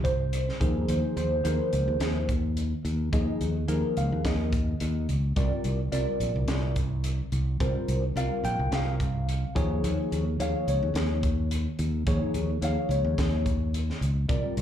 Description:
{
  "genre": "electric jazz fusion",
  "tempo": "107 BPM",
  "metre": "4/4",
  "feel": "swing 54% on 16ths",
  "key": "unclear",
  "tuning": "A4 = 440 Hz",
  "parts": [
    { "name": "tine electric piano", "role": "accompaniment", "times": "0.0-14.6 s", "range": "F3 to G5", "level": "-30 LUFS", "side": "left 1 dB", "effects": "phaser, plate reverb, slapback echo" },
    { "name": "fingered electric bass", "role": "bass", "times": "0.0-14.6 s", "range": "Bb1 to Eb2", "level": "-27 LUFS", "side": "equal", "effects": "none" },
    { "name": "crisp fusion drum kit", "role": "drums", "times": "0.0-14.6 s", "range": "hi-hat, kick drum, snare drum", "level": "-32 LUFS", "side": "equal", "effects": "none" }
  ],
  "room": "light reverb",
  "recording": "live gig heard through the venue's PA, club reverb",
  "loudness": "-25 LUFS",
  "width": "side -10 dB against mid",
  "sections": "0.0-14.6 A section",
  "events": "none",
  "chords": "0.0 N.C.; 0.6 Ebsus4; 5.4 C9sus4; 9.6 Eb9sus4"
}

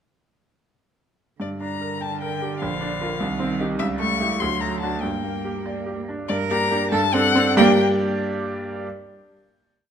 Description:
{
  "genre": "quick classical-period movement for piano trio",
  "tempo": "90-102 BPM (dotted quarters)",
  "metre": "6/8",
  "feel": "rubato",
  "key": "G minor",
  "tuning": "A4 = 441 Hz",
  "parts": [
    { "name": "warm violin", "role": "melody", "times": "1.4-7.8 s", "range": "D5 to C#6", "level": "-25 LUFS", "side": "left 8 dB", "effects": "none" },
    { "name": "warm cello", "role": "second line", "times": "1.4-7.8 s", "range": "D3 to Bb4", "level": "-27 LUFS", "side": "right 7 dB", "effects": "none" },
    { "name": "bright concert grand piano", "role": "accompaniment", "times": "1.4-8.9 s", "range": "Bb1 to G5", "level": "-23 LUFS", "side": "right 1 dB", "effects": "none" }
  ],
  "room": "moderate recital hall reverb, RT60 1.4 s",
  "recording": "none",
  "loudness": "-20 LUFS",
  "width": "side -8 dB against mid",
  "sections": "1.4-6.3 A section; 6.3-7.6 coda; 7.6-8.8 final chord",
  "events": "none",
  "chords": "1.4 Gm; 2.6 Bb; 3.2 Cm; 3.8 A7/C#; 4.4 D; 5.0 Gm; 6.9 D7/G; 7.6 Gm"
}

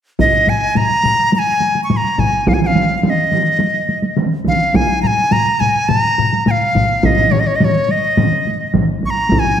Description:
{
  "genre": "japanese traditional, taiko drum ensemble",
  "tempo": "105 BPM",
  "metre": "4/4",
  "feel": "straight",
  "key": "Eb suspended pentatonic",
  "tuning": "A4 = 440 Hz",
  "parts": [
    { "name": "bright reedy large dizi", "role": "melody", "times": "0.2-9.6 s", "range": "Db5 to Db6", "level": "-15 LUFS", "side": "equal", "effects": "none" },
    { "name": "solo taiko drums", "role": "percussion", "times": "0.2-9.6 s", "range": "none", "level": "-20 LUFS", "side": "left 4 dB", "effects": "none" },
    { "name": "solo taiko drums", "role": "percussion", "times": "0.2-9.4 s", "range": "none", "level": "-19 LUFS", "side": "right 1 dB", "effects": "none" },
    { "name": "taiko ensemble", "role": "percussion", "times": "0.2-9.5 s", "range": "none", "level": "-20 LUFS", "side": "equal", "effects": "none" },
    { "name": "taiko ensemble", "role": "percussion", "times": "2.5-8.9 s", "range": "none", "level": "-19 LUFS", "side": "right 3 dB", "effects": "none" }
  ],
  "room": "wet recital hall reverb, RT60 1.6 s",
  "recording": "none",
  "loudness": "-12 LUFS",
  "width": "side -9 dB against mid",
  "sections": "0.2-9.6 A section",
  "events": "none",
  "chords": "none"
}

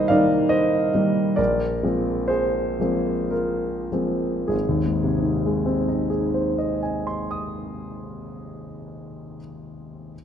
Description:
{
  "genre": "classical, impressionist solo piano",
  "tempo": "48-75 BPM",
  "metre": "3/4",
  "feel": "rubato",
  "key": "Ab lydian",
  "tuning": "A4 = 440 Hz",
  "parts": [
    { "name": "warm concert grand piano", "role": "solo", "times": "0.0-10.2 s", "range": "Ab1 to Eb6", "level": "-21 LUFS", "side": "equal", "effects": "none" }
  ],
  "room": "moderate scoring stage reverb, RT60 1.7 s",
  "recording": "none",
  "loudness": "-20 LUFS",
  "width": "side -8 dB against mid",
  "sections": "0.0-4.5 A section; 4.5-7.9 B section",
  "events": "slowing down 0.0-4.5",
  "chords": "0.0 Cm7; 1.4 Bb9; 4.5 Ab"
}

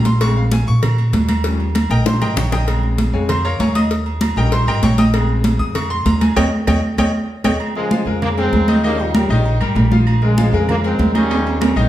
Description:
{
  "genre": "latin, salsa",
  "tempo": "195 BPM",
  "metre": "4/4",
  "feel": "straight",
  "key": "unclear",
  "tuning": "A4 = 440 Hz",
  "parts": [
    { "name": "bright grand piano", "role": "accompaniment", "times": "0.0-11.9 s", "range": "Db3 to Eb6", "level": "-22 LUFS", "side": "left 3 dB", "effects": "none" },
    { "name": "upright bass", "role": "bass", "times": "0.0-11.9 s", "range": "Ab1 to Bb2", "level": "-18 LUFS", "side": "equal", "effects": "none" },
    { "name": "congas", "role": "percussion", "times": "0.1-11.9 s", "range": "none", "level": "-19 LUFS", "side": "equal", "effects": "none" },
    { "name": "cowbell and bongos", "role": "percussion", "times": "0.1-7.5 s", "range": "none", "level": "-27 LUFS", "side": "left 4 dB", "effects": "none" },
    { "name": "agogo bells and timbales", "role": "percussion", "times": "0.2-11.8 s", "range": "none", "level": "-26 LUFS", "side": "right 4 dB", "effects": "none" },
    { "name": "claves", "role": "percussion", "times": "0.2-11.8 s", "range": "none", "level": "-33 LUFS", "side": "right 4 dB", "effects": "none" },
    { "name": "clear trombone section", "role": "melody", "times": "7.8-11.7 s", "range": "Bb2 to Db4", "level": "-21 LUFS", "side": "right 1 dB", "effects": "none" }
  ],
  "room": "wet large studio reverb, RT60 1.3 s",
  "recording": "studio reverb",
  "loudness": "-14 LUFS",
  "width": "side -13 dB against mid",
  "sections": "0.0-7.6 A section; 7.6-11.9 B section",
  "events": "grand piano solo 0.0-7.6; drum fill 1.9-2.7, 6.8-7.6, 11.3-11.9; band accent 6.4-7.6",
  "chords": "0.2 Bbm7; 1.4 Eb7; 2.7 Bbm7; 3.9 Eb7; 5.1 Bbm7; 6.4 Eb7; 7.6 Bbm7; 8.8 Eb7; 10.1 Bbm7; 11.3 Eb7"
}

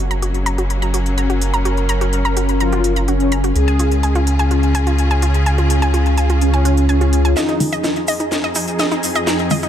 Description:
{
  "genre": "melodic techno",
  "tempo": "126 BPM",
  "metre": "4/4",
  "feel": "straight",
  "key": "F phrygian",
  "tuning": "A4 = 440 Hz",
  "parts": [
    { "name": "mellow synth brass", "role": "melody", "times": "0.0-8.0 s", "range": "Db4 to Ab4", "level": "-23 LUFS", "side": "right 1 dB", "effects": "chorus, ping-pong delay" },
    { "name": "clear symphonic string section", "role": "sustained chords", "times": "0.0-9.7 s", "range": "F2 to Ab4", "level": "-24 LUFS", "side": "left 1 dB", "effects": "low-pass filter" },
    { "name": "round analog bass", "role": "bass", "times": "0.0-7.3 s", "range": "Gb1 to Db2", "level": "-16 LUFS", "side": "equal", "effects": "none" },
    { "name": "warbly tape-like pad", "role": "texture", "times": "0.0-9.7 s", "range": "C4 to Bb5", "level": "-22 LUFS", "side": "left 2 dB", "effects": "chorus, built-in reverb, phaser" },
    { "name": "wide unison pluck", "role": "arpeggios", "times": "0.1-9.7 s", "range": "Eb4 to Bb5", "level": "-22 LUFS", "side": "equal", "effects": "ping-pong delay" },
    { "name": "techno drum kit", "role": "drums", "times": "0.1-9.7 s", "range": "hi-hat, snare drum", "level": "-24 LUFS", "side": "equal", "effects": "overdrive" },
    { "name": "cabasa", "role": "percussion", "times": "7.4-9.7 s", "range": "none", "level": "-27 LUFS", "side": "right 2 dB", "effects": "none" },
    { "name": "filtered dub chord stab", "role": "stabs", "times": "7.6-9.7 s", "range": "Eb3 to F4", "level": "-20 LUFS", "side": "equal", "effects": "phaser" }
  ],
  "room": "light reverb, digital ambience",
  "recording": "dark, warm production",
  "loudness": "-14 LUFS",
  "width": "side -10 dB against mid",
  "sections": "0.0-7.4 A section; 7.4-9.7 B section",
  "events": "build-up 7.4-9.7; drum fill 7.4-9.7; filter sweep on synth stab 7.4-9.7; filter sweep on string section 7.4-9.7",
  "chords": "0.0 Gb; 3.6 Db; 7.4 Fm7"
}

